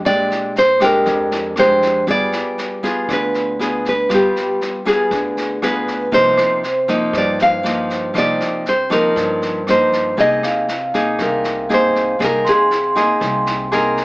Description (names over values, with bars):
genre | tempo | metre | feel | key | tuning
bossa nova | 119 BPM | 4/4 | straight | C minor | A4 = 440 Hz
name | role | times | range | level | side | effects
nylon-string guitar | melody | 0.0-14.0 s | G4 to F5 | -16 LUFS | equal | none
nylon-string guitar | accompaniment | 0.0-14.0 s | F2 to Ab4 | -19 LUFS | equal | none
upright bass | bass | 0.1-14.0 s | G1 to G2 | -31 LUFS | equal | none
vintage brush drum kit | drums | 0.1-14.0 s | kick drum, rim click, snare drum | -27 LUFS | equal | none
vibraphone with medium hard mallets | accompaniment | 6.4-14.0 s | C5 to C6 | -22 LUFS | right 1 dB | none
room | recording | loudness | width
light reverb | AM radio sound | -14 LUFS | side -23 dB against mid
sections
0.0-14.0 A section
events
none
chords
0.0 Bb13; 2.1 G7b9; 6.1 Cm11; 10.2 Fm7/C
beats
| 0.05 0.56 1.06 1.57 | 2.08 2.58 3.09 3.59 | 4.10 4.60 5.11 5.62 | 6.12 6.63 7.13 7.64 | 8.15 8.65 9.16 9.66 | 10.17 10.68 11.18 11.69 | 12.20 12.70 13.21 13.71